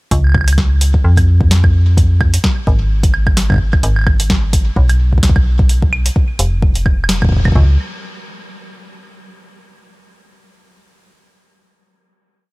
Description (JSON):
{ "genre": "IDM", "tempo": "129 BPM", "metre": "4/4", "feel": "swing 56% on 16ths", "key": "unclear", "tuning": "A4 = 440 Hz", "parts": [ { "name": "metallic FM bass", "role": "bass", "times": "0.1-7.8 s", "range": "F1 to F2", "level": "-13 LUFS", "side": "equal", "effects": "tube saturation" }, { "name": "booming analog drum machine", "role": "drums", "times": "0.1-7.5 s", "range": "hi-hat, snare drum, woodblock", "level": "-21 LUFS", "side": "right 1 dB", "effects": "small room ambience" }, { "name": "electronic kick drum", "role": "drums", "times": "0.1-7.7 s", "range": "none", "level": "-14 LUFS", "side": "equal", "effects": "small room ambience" } ], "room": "little or no reverb", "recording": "none", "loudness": "-10 LUFS", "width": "side -24 dB against mid", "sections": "0.1-7.6 groove; 7.6-9.4 final note", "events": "band accent 7.1", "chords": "none", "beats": "| 0.11 0.58 1.04 1.51 | 1.97 2.44 2.90 3.37 | 3.83 4.30 4.76 5.23 | 5.70 6.16 6.62 7.09 | 7.55" }